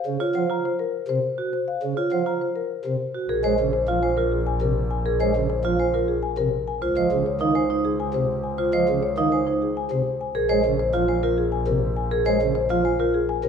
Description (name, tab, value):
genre	classical, minimalist pattern music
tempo	102 BPM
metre	3/4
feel	straight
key	Bb minor from 3.3 s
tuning	A4 = 441 Hz
part	marimba with soft mallets	melody	0.0-13.5 s	Ab4 to Bb5	-26 LUFS	left 7 dB	none
part	pipe organ, flutes	accompaniment	0.1-13.5 s	C3 to Ab3	-28 LUFS	equal	none
part	vibraphone with medium hard mallets	arpeggios	0.2-13.2 s	Eb4 to C5	-24 LUFS	right 5 dB	none
part	clear double bass	bass	3.3-13.5 s	Bb1 to Db2	-28 LUFS	right 1 dB	none
room	moderate recital hall reverb, RT60 1.4 s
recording	minimal, uncompressed stereo recording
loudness	-20 LUFS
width	side -7 dB against mid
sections	0.0-3.3 A section; 3.3-13.5 B section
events	none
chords	0.0 Gbmaj7 (rootless); 3.3 Bbm7; 6.8 Dbmaj7; 10.3 Bbm7